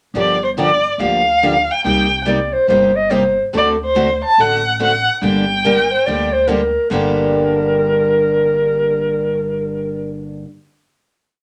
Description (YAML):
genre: acoustic string swing (jazz manouche)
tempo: 142 BPM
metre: 4/4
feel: swing 63% on 8ths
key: G minor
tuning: A4 = 443 Hz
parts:
  - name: picked steel-string acoustic guitar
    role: accompaniment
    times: 0.1-10.5 s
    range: G2 to A4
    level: -24 LUFS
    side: equal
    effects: none
  - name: picked steel-string acoustic guitar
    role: accompaniment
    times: 0.1-10.5 s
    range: G2 to A4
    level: -26 LUFS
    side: equal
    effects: none
  - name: upright bass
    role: bass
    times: 0.1-10.4 s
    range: G1 to D2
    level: -30 LUFS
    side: equal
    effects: none
  - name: warm violin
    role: melody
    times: 0.2-6.5 s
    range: C5 to A5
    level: -18 LUFS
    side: equal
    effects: none
  - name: breathy clarinet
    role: second line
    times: 2.3-10.4 s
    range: Bb4 to Eb5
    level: -18 LUFS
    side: equal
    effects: none
room: wet small room reverb, RT60 0.6 s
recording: none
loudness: -16 LUFS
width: mono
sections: 0.1-6.9 A section; 6.9-10.3 final chord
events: none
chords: 0.1 Gm7; 1.8 Cm7; 3.5 D7; 5.2 Gm